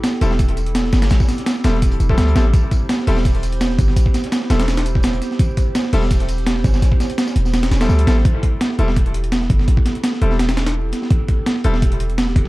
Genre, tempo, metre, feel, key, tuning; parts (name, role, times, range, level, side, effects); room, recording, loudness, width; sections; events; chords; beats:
drum and bass, jungle; 168 BPM; 4/4; straight; A minor; A4 = 437 Hz
warbly tape-like pad; sustained chords; 0.0-12.5 s; C4 to C5; -29 LUFS; right 2 dB; chorus, built-in reverb
breakbeat sampler-style drum kit; drums; 0.0-12.5 s; hi-hat, kick drum, snare drum; -18 LUFS; equal; overdrive
crunchy breakbeat drum kit; drums; 0.0-8.2 s; hi-hat, snare drum, tambourine; -35 LUFS; equal; high-pass filter on hats, high-pass filter on snare, high-pass filter on perc, high-pass filter on room
bright concert grand piano; stabs; 0.2-11.7 s; G3 to A4; -26 LUFS; left 3 dB; dub echo
warm 808-style bass; bass; 0.2-12.5 s; E1 to D2; -16 LUFS; equal
studio reverb; dark, warm production, vinyl crackle; -14 LUFS; side -19 dB against mid
0.0-8.3 A section; 8.3-12.5 A section
drop 0.0-8.3, 8.3-12.5
0.0 Am7
0.04 0.39 0.75 | 1.11 1.47 1.82 2.18 | 2.54 2.89 3.25 3.61 | 3.96 4.32 4.68 5.04 | 5.39 5.75 6.11 6.46 | 6.82 7.18 7.54 7.89 | 8.25 8.61 8.96 9.32 | 9.68 10.04 10.39 10.75 | 11.11 11.46 11.82 12.18